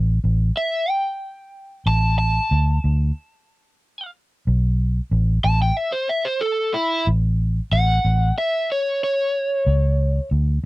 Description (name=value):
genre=straight-eighth soul blues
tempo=92 BPM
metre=4/4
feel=straight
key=A mixolydian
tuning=A4 = 440 Hz
part: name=vintage muted fingered electric bass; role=bass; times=0.0-10.6 s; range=A1 to D2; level=-18 LUFS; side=equal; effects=none
part: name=overdriven semi-hollow guitar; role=melody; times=0.6-10.3 s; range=E4 to A5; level=-21 LUFS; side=equal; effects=none
room=little or no reverb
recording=dry, close 1970s-style studio recording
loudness=-18 LUFS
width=side -19 dB against mid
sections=0.0-10.7 A section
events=none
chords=0.0 Emadd11/A (rootless); 2.5 D5; 5.1 A